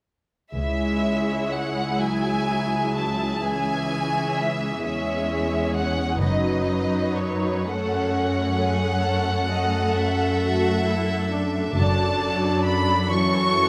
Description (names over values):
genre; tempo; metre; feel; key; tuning
classical; 39-46 BPM (dotted quarters); 12/8; rubato; C# minor; A4 = 440 Hz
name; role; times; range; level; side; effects
warm studio violin section; melody; 0.5-13.7 s; C#5 to C#6; -29 LUFS; equal; none
rich studio violin section; second line; 0.5-13.7 s; F#4 to E5; -32 LUFS; equal; none
clear studio viola section; accompaniment; 0.5-13.7 s; E3 to F#4; -29 LUFS; equal; none
warm studio cello section; bass; 0.5-13.7 s; C#2 to F#2; -28 LUFS; equal; none
warm studio double bass section; bass; 0.5-12.6 s; F#1 to C#2; -28 LUFS; equal; none
room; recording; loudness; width
moderate concert hall reverb, RT60 1.9 s; none; -23 LUFS; mono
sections
0.5-13.7 A section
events
none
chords
0.5 C#m; 6.2 F#m7; 11.7 D/F#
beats
| 0.54 2.02 3.43 4.83 | 6.20 7.68 9.04 10.36 | 11.74 13.12